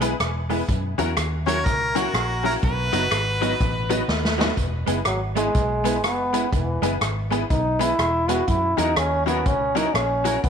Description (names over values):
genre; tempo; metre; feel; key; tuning
ska; 123 BPM; 4/4; swing 62% on 8ths; E major; A4 = 442 Hz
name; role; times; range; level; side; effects
vintage hollow-body jazz guitar; accompaniment; 0.0-10.4 s; F#3 to E4; -30 LUFS; right 11 dB; tape echo
honky-tonk upright piano; stabs; 0.0-10.3 s; B3 to B4; -28 LUFS; left 10 dB; none
vintage muted fingered electric bass; bass; 0.0-10.5 s; E1 to F#2; -27 LUFS; equal; none
swinging big-band drum kit; drums; 0.0-10.5 s; hi-hat, kick drum, rim click, snare drum; -26 LUFS; equal; none
clear harmonica; melody; 1.5-4.1 s; F#4 to C#5; -26 LUFS; equal; tape echo
warm trombone; melody; 5.1-10.5 s; E3 to F#4; -23 LUFS; equal; none
room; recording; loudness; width
moderate echo chamber reverb, RT60 2.1 s; 1960s-style stereo with parts hard left and right; -20 LUFS; side -7 dB against mid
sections
0.0-4.6 A section; 4.6-10.5 B section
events
drum fill 4.1-4.6; trombone solo 4.6-10.5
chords
0.0 E; 0.7 F#7; 2.6 B; 4.6 E; 8.5 F#7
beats
0.20 | 0.69 1.17 1.66 2.14 | 2.63 3.12 3.60 4.09 | 4.58 5.06 5.55 6.04 | 6.53 7.01 7.50 7.99 | 8.48 8.97 9.46 9.95 | 10.44